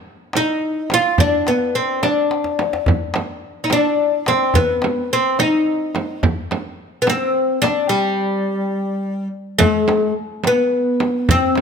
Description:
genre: Persian modal ensemble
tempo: 71 BPM (dotted quarters)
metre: 6/8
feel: straight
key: G dastgah homayun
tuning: A4 = 440 Hz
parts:
  - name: tombak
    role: percussion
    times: 0.3-11.6 s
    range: none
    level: -23 LUFS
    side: left 1 dB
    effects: none
  - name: oud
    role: melody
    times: 0.4-11.6 s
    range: G3 to F4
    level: -17 LUFS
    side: left 1 dB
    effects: none
  - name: frame drum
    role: percussion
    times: 0.4-11.6 s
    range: none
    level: -22 LUFS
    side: right 6 dB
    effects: none
room: light reverb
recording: close, detailed microphones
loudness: -16 LUFS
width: side -6 dB against mid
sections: 0.0-9.6 A section; 9.6-11.6 B section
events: drum fill 2.3-2.9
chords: none

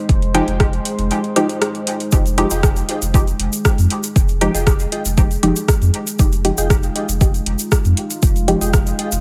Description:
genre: dub techno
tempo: 118 BPM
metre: 4/4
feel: straight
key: F minor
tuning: A4 = 440 Hz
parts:
  - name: deep dark ambient pad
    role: sustained chords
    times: 0.0-9.2 s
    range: Ab3 to C5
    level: -28 LUFS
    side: equal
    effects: chorus, built-in reverb, sidechain pumping
  - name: pure sine sub bass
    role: bass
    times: 0.1-9.2 s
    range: F1 to F2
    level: -22 LUFS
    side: equal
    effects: tube saturation, sidechain pumping
  - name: deep house drum kit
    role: drums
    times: 0.1-9.2 s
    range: hi-hat, rim click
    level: -25 LUFS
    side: equal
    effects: overdrive
  - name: electronic kick drum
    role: drums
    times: 0.1-8.8 s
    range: none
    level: -17 LUFS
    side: equal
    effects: overdrive
  - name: filtered dub chord stab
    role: stabs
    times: 0.3-8.6 s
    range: F3 to G4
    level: -24 LUFS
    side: equal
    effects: chorus, phaser, sidechain pumping, dub echo
  - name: egg shaker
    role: percussion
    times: 2.1-9.2 s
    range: none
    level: -29 LUFS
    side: equal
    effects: none
  - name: wavetable chord stab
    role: riff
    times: 2.5-9.1 s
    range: F4 to G5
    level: -30 LUFS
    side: equal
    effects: sidechain pumping, dub echo
room: light reverb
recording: none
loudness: -17 LUFS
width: mono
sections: 0.0-9.2 A section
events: filter sweep on synth stab 0.0-9.2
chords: 0.0 Fm9

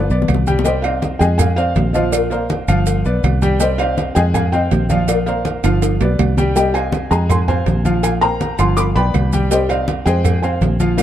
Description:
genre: latin, salsa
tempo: 163 BPM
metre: 4/4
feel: straight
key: C minor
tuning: A4 = 439 Hz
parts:
  - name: bright baby grand piano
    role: accompaniment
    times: 0.0-11.0 s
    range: F3 to Ab5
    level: -21 LUFS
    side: equal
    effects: none
  - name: fingered electric bass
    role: bass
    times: 0.0-11.0 s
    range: G1 to F2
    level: -17 LUFS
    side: equal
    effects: none
  - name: congas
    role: percussion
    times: 0.1-11.0 s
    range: none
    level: -22 LUFS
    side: equal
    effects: none
  - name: maracas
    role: percussion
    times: 0.1-11.0 s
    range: none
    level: -31 LUFS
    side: right 6 dB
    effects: none
  - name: bongos and cowbell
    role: percussion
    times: 0.2-11.0 s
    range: none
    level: -27 LUFS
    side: left 8 dB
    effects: none
  - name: claves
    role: percussion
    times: 0.3-11.0 s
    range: none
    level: -33 LUFS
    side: right 7 dB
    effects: none
  - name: timbales and agogo bells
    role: percussion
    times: 0.3-11.0 s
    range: none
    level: -26 LUFS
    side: right 9 dB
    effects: none
  - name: felt-muted upright piano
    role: melody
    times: 0.6-11.0 s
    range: Bb4 to D6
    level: -20 LUFS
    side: equal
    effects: none
room: light reverb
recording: dark, warm production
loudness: -14 LUFS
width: side -11 dB against mid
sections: 0.7-11.0 A section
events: drum fill 0.0-0.7, 5.6-6.6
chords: 0.0 G; 0.7 Cm; 1.4 Fm; 2.1 Bbadd9; 2.9 G7; 3.6 Cm; 4.3 Fm; 5.1 Bbadd9; 5.8 G7; 6.6 Cm; 7.3 Fm; 8.0 Bbsus2; 8.8 G7; 9.5 Cm; 10.2 Fm

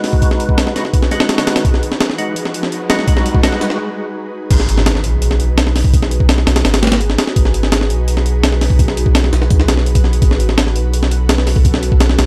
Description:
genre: drum and bass, jungle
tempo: 168 BPM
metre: 4/4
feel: straight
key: G# phrygian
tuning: A4 = 439 Hz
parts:
  - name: ethereal airy pad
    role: sustained chords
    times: 0.1-12.3 s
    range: C#4 to B4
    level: -26 LUFS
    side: equal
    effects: ensemble chorus, built-in reverb
  - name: percussive tonewheel organ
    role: stabs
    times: 0.0-3.8 s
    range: G#3 to B4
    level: -23 LUFS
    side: equal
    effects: chorus vibrato, slow rotary speaker, dub echo
  - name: breakbeat sampler-style drum kit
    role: drums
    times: 0.0-12.3 s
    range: crash cymbal, hi-hat, kick drum, snare drum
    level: -16 LUFS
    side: equal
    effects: none
  - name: riser and impact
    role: sound effects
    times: 0.5-5.9 s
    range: none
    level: -29 LUFS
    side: equal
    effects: none
  - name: soft dub sub bass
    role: bass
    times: 4.5-12.3 s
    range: G#1 to B1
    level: -18 LUFS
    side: equal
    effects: none
room: light reverb, digital ambience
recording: dry, gritty hardware recording, transformer saturation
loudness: -14 LUFS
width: mono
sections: 0.0-4.5 A section; 4.5-12.3 B section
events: build-up 0.0-4.5; filter sweep on ambient pad 0.0-4.5; riser 0.5-3.8; break 3.8-4.5; drop 4.5-12.3; impact 4.5-5.9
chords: 0.0 G#m7; 10.2 A69

